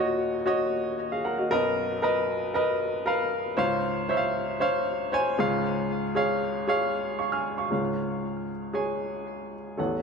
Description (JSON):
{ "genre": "pop", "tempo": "116 BPM", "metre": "4/4", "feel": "straight", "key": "Db major", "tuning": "A4 = 439 Hz", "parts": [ { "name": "clear upright piano", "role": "solo", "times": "0.0-10.0 s", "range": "A1 to F6", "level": "-25 LUFS", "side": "equal", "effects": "ping-pong delay" } ], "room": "moderate scoring stage reverb, RT60 1.9 s", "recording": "none", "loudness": "-25 LUFS", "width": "side -5 dB against mid", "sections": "0.0-7.7 A section; 7.7-10.0 B section", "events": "none", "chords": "0.0 Ebm7; 1.5 Cbmaj7; 3.6 Dbmaj7; 5.4 Db" }